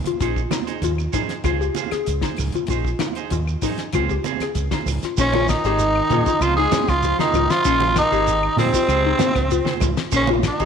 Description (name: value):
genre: afrobeat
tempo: 97 BPM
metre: 4/4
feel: straight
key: Bb dorian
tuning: A4 = 440 Hz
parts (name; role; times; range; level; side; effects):
- congas; percussion; 0.0-10.4 s; none; -28 LUFS; right 10 dB; none
- mallet-like synth pluck; arpeggios; 0.1-10.7 s; C4 to Ab4; -25 LUFS; left 12 dB; chorus, phaser
- deep dub fingered electric bass; bass; 0.1-10.7 s; Ab1 to Bb2; -23 LUFS; right 1 dB; transformer saturation
- damped 70s drum kit; drums; 0.1-10.7 s; crash cymbal, hi-hat, kick drum, ride cymbal, snare drum; -28 LUFS; left 4 dB; none
- shekere; percussion; 0.1-10.7 s; none; -32 LUFS; right 7 dB; none
- clean electric guitar; stabs; 0.2-10.7 s; C4 to C5; -29 LUFS; right 12 dB; none
- claves; percussion; 0.5-10.6 s; none; -38 LUFS; left 11 dB; none
- raspy tenor saxophone; melody; 5.2-10.7 s; C4 to Ab4; -20 LUFS; equal; slapback echo
- brilliant trombone section; second line; 5.2-10.7 s; C3 to Ab3; -30 LUFS; left 9 dB; none
- clear trombone; second line; 5.2-10.7 s; C4 to Ab4; -28 LUFS; right 11 dB; none
room: moderate echo chamber reverb, RT60 2.1 s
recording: 1960s-style stereo with parts hard left and right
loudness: -18 LUFS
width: side -7 dB against mid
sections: 0.0-5.2 A section; 5.2-10.7 B section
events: none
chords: 0.2 Bbm11; 1.5 Dbmaj7; 2.7 Bbm11; 3.9 Dbmaj7; 5.2 Bbm11; 6.4 Dbmaj7; 7.7 Bbm11; 8.9 Dbmaj7; 10.1 Bbm11